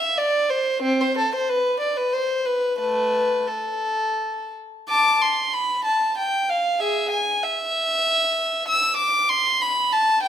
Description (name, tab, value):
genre	classical, baroque-style suite movement for unaccompanied violin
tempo	83-98 BPM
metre	3/4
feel	rubato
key	A minor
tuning	A4 = 440 Hz
part	rich violin	solo	0.0-10.3 s	A3 to E6	-19 LUFS	equal	none
room	moderate recital hall reverb, RT60 1.4 s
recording	none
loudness	-19 LUFS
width	side -9 dB against mid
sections	0.0-4.9 A section; 4.9-10.3 B section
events	none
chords	none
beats	0.17 | 0.83 1.48 2.12 | 2.79 3.47 4.17 | 4.88 5.53 6.17 | 6.81 7.43 8.06 | 8.68 9.29 9.92